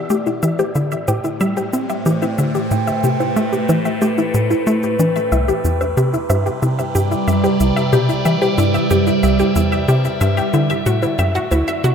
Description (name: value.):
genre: ambient, sequencer-driven space music.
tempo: 92 BPM.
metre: 4/4.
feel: straight.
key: unclear.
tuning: A4 = 442 Hz.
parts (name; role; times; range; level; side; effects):
evolving wavetable pad; sustained chords; 0.0-11.9 s; A2 to G5; -20 LUFS; right 1 dB; phaser, built-in reverb.
wide unison pluck; arpeggios; 0.0-11.9 s; D4 to E5; -21 LUFS; left 2 dB; auto-pan, ping-pong delay.
tight sequencer bass; riff; 0.1-11.9 s; C2 to C4; -18 LUFS; equal; ping-pong delay.
cabasa and bongos; percussion; 0.1-11.9 s; none; -29 LUFS; right 3 dB; ping-pong delay.
room: wet spring reverb, RT60 2.4 s.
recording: echo-heavy mix.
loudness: -15 LUFS.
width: side -7 dB against mid.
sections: 0.0-11.9 A section.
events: filter sweep on synth arpeggio sound 0.0-11.9.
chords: 0.1 Am7; 5.3 Cmaj7; 10.5 D.